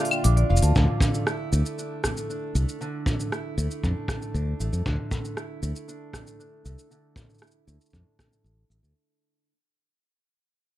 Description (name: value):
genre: folktronica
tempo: 117 BPM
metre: 4/4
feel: straight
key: D minor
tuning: A4 = 440 Hz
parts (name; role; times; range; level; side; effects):
- marimba with medium hard mallets; second line; 0.0-0.7 s; D5 to D6; -34 LUFS; right 5 dB; tape echo, plate reverb
- warbly tape-like pad; sustained chords; 0.0-0.8 s; Bb3 to D5; -42 LUFS; left 2 dB; none
- fingerpicked steel-string acoustic guitar; arpeggios; 0.0-9.5 s; Bb2 to F4; -32 LUFS; right 1 dB; low-pass filter, ping-pong delay
- organic electronic drum kit; drums; 0.1-8.9 s; claves, hi-hat, rim click, shaker; -30 LUFS; equal; small room ambience
- modern bright fingered electric bass; bass; 0.2-8.9 s; F1 to F2; -22 LUFS; equal; none
- kick drum; drums; 0.8-8.3 s; none; -26 LUFS; equal; small room ambience
room: little or no reverb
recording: none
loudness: -23 LUFS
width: side -15 dB against mid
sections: 0.8-9.0 A section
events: break 0.0-0.8; fade-out 0.8-9.0; filter sweep on steel-string acoustic guitar 0.8-9.0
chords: 0.0 Bb; 0.8 Dsus2